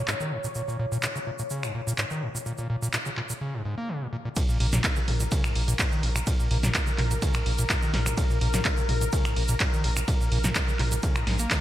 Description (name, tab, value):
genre	acid house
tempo	126 BPM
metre	4/4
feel	straight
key	Bb minor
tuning	A4 = 439 Hz
part	warm analog pad	sustained chords	0.0-11.6 s	Bb4 to Db5	-35 LUFS	left 2 dB	wide subtle chorus, sidechain pumping
part	overdriven acid bass	riff	0.0-11.6 s	Ab2 to Bb3	-30 LUFS	equal	distortion, sidechain pumping
part	punchy analog drum machine	drums	0.1-11.6 s	finger snaps, handclaps, hi-hat, ride cymbal, snare drum, toms	-29 LUFS	equal	none
part	egg shaker	percussion	0.1-11.6 s	none	-36 LUFS	right 4 dB	none
part	electronic kick drum	drums	4.4-11.6 s	none	-26 LUFS	equal	none
part	round analog bass	bass	4.6-11.5 s	Bb1	-27 LUFS	equal	sidechain pumping
room	light reverb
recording	bright 1980s-style digital production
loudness	-24 LUFS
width	side -13 dB against mid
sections	0.0-4.4 A section; 4.4-11.6 B section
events	break 3.4-4.4; drop 4.4-11.6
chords	0.0 Bbm; 4.4 N.C.